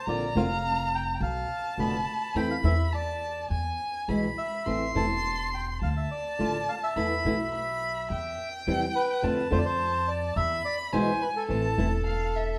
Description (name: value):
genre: tango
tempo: 105 BPM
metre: 4/4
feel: rubato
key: A minor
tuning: A4 = 440 Hz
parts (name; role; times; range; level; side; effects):
- bandoneon; melody; 0.0-12.6 s; A4 to B5; -34 LUFS; equal; none
- warm violin; second line; 0.0-12.6 s; E5 to C6; -34 LUFS; equal; none
- flamenco guitar; accompaniment; 0.1-11.9 s; B2 to F4; -32 LUFS; equal; none
- upright bass; bass; 0.1-12.6 s; E1 to F2; -33 LUFS; equal; none
room: moderate large studio reverb, RT60 1.1 s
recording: band playing live in one room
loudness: -28 LUFS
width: mono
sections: 0.0-12.6 A section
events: none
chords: 0.1 Bbadd9; 1.2 Bm7b5; 2.3 Am/E; 3.5 E; 4.7 Am; 5.8 Dm; 7.0 Esus4; 8.1 C/E; 9.2 Dm7/F; 10.4 E; 11.5 Am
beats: | 0.07 0.64 1.21 1.77 | 2.35 2.92 3.50 4.08 | 4.66 5.24 5.82 6.39 | 6.96 7.53 8.10 8.67 | 9.23 9.80 10.36 10.93 | 11.49 12.06